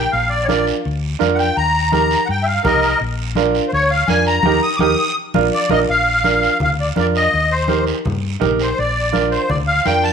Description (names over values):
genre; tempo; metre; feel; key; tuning
latin, cumbia; 166 BPM; 4/4; straight; Bb major; A4 = 440 Hz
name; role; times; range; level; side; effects
musette accordion; melody; 0.0-10.1 s; Bb4 to Eb6; -17 LUFS; left 1 dB; none
hollow-body short-scale fingered electric bass; bass; 0.0-10.1 s; Bb1 to G2; -22 LUFS; left 2 dB; none
congas; percussion; 0.1-10.0 s; none; -24 LUFS; left 2 dB; none
guiro; percussion; 0.1-10.1 s; none; -30 LUFS; right 10 dB; none
warm upright piano; accompaniment; 0.5-10.1 s; D4 to Bb4; -19 LUFS; right 5 dB; none
room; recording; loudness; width
wet echo chamber reverb, RT60 1.2 s, small room ambience; 1960s-style stereo; -14 LUFS; side -7 dB against mid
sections
0.0-5.9 A section; 5.9-10.1 B section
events
accordion solo 0.0-5.9; band accent 4.4-5.9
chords
0.1 Bb; 1.6 Eb; 3.0 Bb; 4.4 Eb; 5.2 Bb; 7.3 Eb; 8.8 Bb